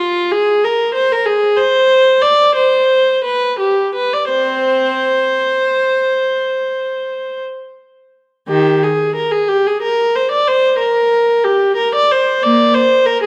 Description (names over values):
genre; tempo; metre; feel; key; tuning
classical, baroque-style suite movement for unaccompanied viola; 56-63 BPM (dotted quarters); 12/8; rubato; unclear; A4 = 441 Hz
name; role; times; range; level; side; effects
warm viola; solo; 0.0-13.3 s; Eb3 to D5; -14 LUFS; equal; none
room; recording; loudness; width
wet recital hall reverb, RT60 1.6 s; none; -14 LUFS; mono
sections
0.0-8.5 A section; 8.5-13.3 A section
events
none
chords
none